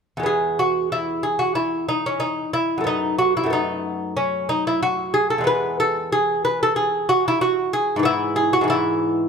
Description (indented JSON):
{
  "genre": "classical, baroque-style dance for lute",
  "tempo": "92 BPM",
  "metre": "4/4",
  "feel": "rubato",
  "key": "E major",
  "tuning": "A4 = 440 Hz",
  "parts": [
    { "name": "lute", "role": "solo", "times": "0.2-9.3 s", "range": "E2 to B4", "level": "-18 LUFS", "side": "equal", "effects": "none" }
  ],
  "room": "moderate recital hall reverb, RT60 1.6 s",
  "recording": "none",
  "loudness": "-19 LUFS",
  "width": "side -6 dB against mid",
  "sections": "0.3-9.3 A section",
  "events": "none",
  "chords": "0.3 E; 8.1 E/G#",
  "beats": "| 0.26 0.92 1.57 2.22 | 2.88 3.53 4.17 4.82 | 5.48 6.14 6.78 7.42 | 8.05 8.70"
}